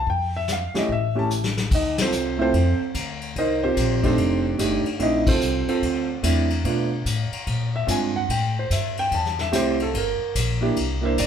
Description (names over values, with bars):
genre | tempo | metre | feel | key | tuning
jazz piano trio | 146 BPM | 4/4 | swing 65% on 8ths | unclear | A4 = 441 Hz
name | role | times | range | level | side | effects
warm concert grand piano | melody | 0.0-11.3 s | Ab3 to A5 | -22 LUFS | right 2 dB | none
upright bass | bass | 0.0-11.3 s | F1 to B2 | -26 LUFS | left 1 dB | none
vintage brush drum kit | drums | 0.1-11.3 s | brushed snare drum, crash cymbal, hi-hat, kick drum, ride cymbal, snare drum | -28 LUFS | left 2 dB | none
room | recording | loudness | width
moderate large studio reverb, RT60 0.9 s | band playing live in one room | -20 LUFS | side -8 dB against mid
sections
0.0-1.7 A section; 1.7-11.3 B section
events
drum fill 1.3-1.7; band accent 1.9, 5.2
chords
0.0 Fsus2; 0.9 A5; 1.7 Dm7; 3.4 Cm11; 4.2 F13; 5.0 Bbmaj9#11; 6.6 Bm7b5; 7.5 Bb9; 8.3 Am7; 9.9 Gm; 10.8 C7